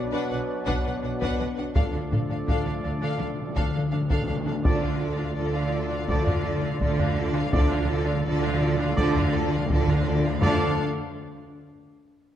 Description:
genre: cinematic, epic orchestral film score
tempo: 83 BPM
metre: 4/4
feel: straight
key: D minor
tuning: A4 = 439 Hz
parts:
  - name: rich symphonic violin section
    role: melody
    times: 0.0-10.8 s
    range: D5 to F#5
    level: -36 LUFS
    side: left 4 dB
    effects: none
  - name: rich symphonic viola section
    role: accompaniment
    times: 0.0-10.8 s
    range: D4 to F4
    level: -35 LUFS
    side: right 2 dB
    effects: none
  - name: mellow French horn section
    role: sustained chords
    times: 0.0-10.7 s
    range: A3 to D4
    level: -35 LUFS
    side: left 3 dB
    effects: none
  - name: mellow trombone section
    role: sustained chords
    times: 0.0-10.7 s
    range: B2 to F#3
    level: -35 LUFS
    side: right 3 dB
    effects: none
  - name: mellow woodwind section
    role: sustained chords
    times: 0.0-10.7 s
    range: D4 to D5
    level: -36 LUFS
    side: left 2 dB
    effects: none
  - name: mellow trumpet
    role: stabs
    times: 0.0-10.7 s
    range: D5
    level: -37 LUFS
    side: right 2 dB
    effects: none
  - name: rich symphonic cello section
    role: bass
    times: 0.0-10.8 s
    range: B2 to D3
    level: -32 LUFS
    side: right 4 dB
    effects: none
  - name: rich symphonic double bass section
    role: bass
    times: 0.0-10.8 s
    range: B1 to D2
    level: -30 LUFS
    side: right 3 dB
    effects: none
  - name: warm symphonic violin section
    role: second line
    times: 0.1-10.8 s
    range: F4 to B4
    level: -35 LUFS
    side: left 3 dB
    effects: none
  - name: taiko ensemble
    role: drums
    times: 0.7-10.6 s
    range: none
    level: -27 LUFS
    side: equal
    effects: none
  - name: timpani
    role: percussion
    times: 1.8-10.8 s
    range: D3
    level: -30 LUFS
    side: left 2 dB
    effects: none
room: wet scoring stage reverb, RT60 1.9 s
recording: dark, warm production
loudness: -22 LUFS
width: side -10 dB against mid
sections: 0.0-4.6 A section; 4.6-10.4 B section; 10.4-12.4 C section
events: timpani fill 1.8-4.6, 4.6-10.4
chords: 0.0 Bm; 1.8 Dm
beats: 0.32 1.04 | 1.76 2.48 3.20 3.92 | 4.65 5.37 6.09 6.81 | 7.53 8.25 8.97 9.69 | 10.41

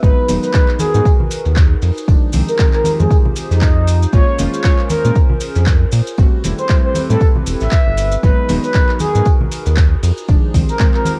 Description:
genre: deep house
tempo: 117 BPM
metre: 4/4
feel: swing 57% on 16ths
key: unclear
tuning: A4 = 440 Hz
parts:
  - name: mellow horn-like synth lead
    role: melody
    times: 0.0-11.1 s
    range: Eb4 to E5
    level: -22 LUFS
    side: equal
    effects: chorus, phaser, cassette tape
  - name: hollow soft pad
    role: sustained chords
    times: 0.0-11.2 s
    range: C4 to C5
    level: -30 LUFS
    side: equal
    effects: chorus, sidechain pumping, cassette tape
  - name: deep mellow chord stab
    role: stabs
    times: 0.0-11.2 s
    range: Eb3 to Gb4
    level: -24 LUFS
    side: equal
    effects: chorus, sidechain pumping, cassette tape
  - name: round analog bass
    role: bass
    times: 0.0-10.6 s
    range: Eb1 to Bb2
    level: -17 LUFS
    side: equal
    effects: none
  - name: electronic kick drum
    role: drums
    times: 0.0-10.9 s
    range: none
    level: -15 LUFS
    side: equal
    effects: overdrive, small room ambience, cassette tape
  - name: soft brush drum kit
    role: drums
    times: 0.0-11.2 s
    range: hi-hat, snare drum, tambourine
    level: -40 LUFS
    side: equal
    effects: none
  - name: maracas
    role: percussion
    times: 0.0-11.2 s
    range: none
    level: -34 LUFS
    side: equal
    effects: none
  - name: deep house drum kit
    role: drums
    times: 0.3-11.2 s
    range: handclaps, hi-hat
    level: -30 LUFS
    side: equal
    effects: overdrive, small room ambience, cassette tape
  - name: congas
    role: percussion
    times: 0.3-11.2 s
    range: none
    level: -26 LUFS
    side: equal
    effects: none
room: light reverb, studio ambience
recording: home recording on cassette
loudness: -14 LUFS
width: mono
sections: 0.0-11.2 A section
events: none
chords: 0.0 Abm7; 1.8 Fm7; 4.1 Bbm7; 6.2 Am7; 8.2 Abm7; 10.0 Fm7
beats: | 0.03 0.54 1.05 1.57 | 2.08 2.59 3.10 3.62 | 4.13 4.64 5.16 5.67 | 6.18 6.70 7.21 7.72 | 8.23 8.75 9.26 9.77 | 10.29 10.80

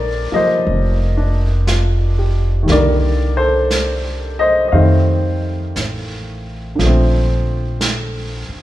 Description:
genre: jazz ballad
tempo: 59 BPM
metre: 4/4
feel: swing 66% on 8ths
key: Bb major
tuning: A4 = 441 Hz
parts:
  - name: warm baby grand piano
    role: accompaniment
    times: 0.0-8.6 s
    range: D3 to F5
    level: -18 LUFS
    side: equal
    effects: none
  - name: upright bass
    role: bass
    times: 0.0-8.5 s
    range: F1 to F2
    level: -17 LUFS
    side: equal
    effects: none
  - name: vintage brush drum kit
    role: drums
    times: 0.7-8.6 s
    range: brushed snare drum, hi-hat, snare drum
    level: -25 LUFS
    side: right 2 dB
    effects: none
room: wet recital hall reverb, RT60 1.8 s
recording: recorded in a church or concert hall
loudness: -14 LUFS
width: side -15 dB against mid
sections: 0.0-6.8 A section; 6.8-8.6 B section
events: none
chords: 0.0 Bbmaj9; 2.7 Cm7; 4.7 F7; 6.8 Bbmaj9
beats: 0.66 1.67 | 2.68 3.70 4.73 5.76 | 6.79 7.82

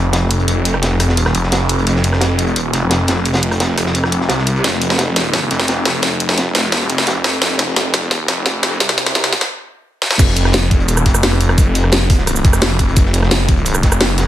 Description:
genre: dark technical drum and bass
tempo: 173 BPM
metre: 4/4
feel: straight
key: unclear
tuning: A4 = 445 Hz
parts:
  - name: snarling distorted saw bass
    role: bass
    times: 0.0-14.3 s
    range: F1 to C2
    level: -16 LUFS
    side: equal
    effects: distortion, tube saturation, sidechain pumping
  - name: crunchy breakbeat drum kit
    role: drums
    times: 0.1-14.3 s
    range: hi-hat, snare drum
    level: -24 LUFS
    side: equal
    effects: high-pass filter on hats, small room reverb, high-pass filter on snare, high-pass filter on room
  - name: drum and bass drum kit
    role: drums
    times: 0.1-14.2 s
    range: crash cymbal, hi-hat, rim click, shaker, snare drum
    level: -16 LUFS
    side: equal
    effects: high-pass filter on hats, small room reverb, high-pass filter on toms, high-pass filter on snare, high-pass filter on cymbals, high-pass filter on perc
  - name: electronic kick drum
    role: drums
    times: 10.2-13.9 s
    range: none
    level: -13 LUFS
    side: equal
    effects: small room reverb
room: digital ambience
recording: high-pass filter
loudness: -13 LUFS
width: side -12 dB against mid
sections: 0.0-10.2 A section; 10.2-14.3 B section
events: build-up 0.0-10.2; filter sweep 0.0-10.2; drum fill 4.6-9.5, 10.0; stop 9.5-10.2; drop 10.2-14.3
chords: none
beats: 0.13 | 0.48 0.83 1.17 1.52 | 1.87 2.21 2.56 2.91 | 3.25 3.60 3.95 4.29 | 4.64 4.99 5.34 5.68 | 6.03 6.38 6.72 7.07 | 7.42 7.76 8.11 8.46 | 8.80 9.15 9.50 9.85 | 10.19 10.54 10.88 11.23 | 11.58 11.93 12.27 12.62 | 12.97 13.31 13.66 14.01

